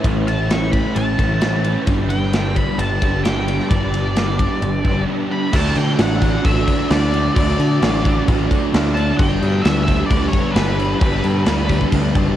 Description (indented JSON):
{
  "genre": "rock, shoegaze and dream pop",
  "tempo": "131 BPM",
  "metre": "4/4",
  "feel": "straight",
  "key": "D major",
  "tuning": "A4 = 436 Hz",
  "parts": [
    { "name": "soft string machine", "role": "sustained chords", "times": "0.0-12.4 s", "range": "C#4 to A5", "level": "-30 LUFS", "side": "equal", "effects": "ensemble chorus, cassette tape" },
    { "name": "biting overdriven guitar", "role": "riff", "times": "0.0-12.4 s", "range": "G2 to D4", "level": "-28 LUFS", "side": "equal", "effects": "cassette tape" },
    { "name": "raw garage guitar", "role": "riff", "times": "0.0-12.4 s", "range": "G2 to E4", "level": "-24 LUFS", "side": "right 8 dB", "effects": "overdrive, reverse reverb, cassette tape" },
    { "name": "thick fuzz guitar", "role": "riff", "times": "0.0-12.4 s", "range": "G2 to D4", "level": "-25 LUFS", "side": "left 8 dB", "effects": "distortion, analog chorus, cassette tape" },
    { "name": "growling picked electric bass", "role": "bass", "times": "0.0-12.4 s", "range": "F#1 to D3", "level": "-20 LUFS", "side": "equal", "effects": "overdrive" },
    { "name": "big rock drum kit", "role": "drums", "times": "0.0-12.3 s", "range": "crash cymbal, kick drum, ride cymbal, snare drum", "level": "-20 LUFS", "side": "equal", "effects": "cassette tape" },
    { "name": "octave-fuzz lead guitar", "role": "melody", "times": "0.3-11.9 s", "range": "B4 to C#6", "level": "-25 LUFS", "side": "equal", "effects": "distortion, cassette tape, analog delay" }
  ],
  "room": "studio ambience",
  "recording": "home recording on cassette",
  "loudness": "-15 LUFS",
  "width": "side -12 dB against mid",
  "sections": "0.0-5.5 A section; 5.5-12.4 B section",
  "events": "none",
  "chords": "0.0 Aadd9; 1.9 Gadd9; 5.5 D; 9.2 Gadd9"
}